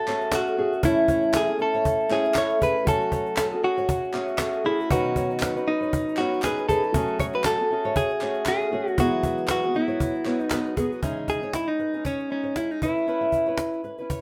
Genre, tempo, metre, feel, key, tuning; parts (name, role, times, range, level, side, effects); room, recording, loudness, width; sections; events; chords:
acoustic pop; 118 BPM; 4/4; swing 55% on 16ths; A4 = 440 Hz
direct-recorded clean electric guitar; melody; 0.0-13.8 s; C#4 to C#5; -28 LUFS; equal
dark upright piano; accompaniment; 0.0-11.0 s; G#3 to G#5; -38 LUFS; equal
fingerpicked acoustic archtop guitar; accompaniment; 0.0-14.2 s; A2 to B4; -30 LUFS; equal
nylon-string guitar; arpeggios; 0.1-14.2 s; G#4 to E5; -34 LUFS; equal
group handclap; percussion; 0.1-10.6 s; -38 LUFS; equal
cajon; drums; 0.2-14.2 s; -30 LUFS; equal
moderate studio reverb, RT60 0.6 s; -24 LUFS; mono
0.0-11.0 A section; 11.0-14.2 B section
0.0 F#madd9; 0.8 A; 2.9 F#madd9; 4.9 Badd9; 6.9 F#madd9; 9.0 Eadd9; 11.0 C#madd9; 12.8 Aadd9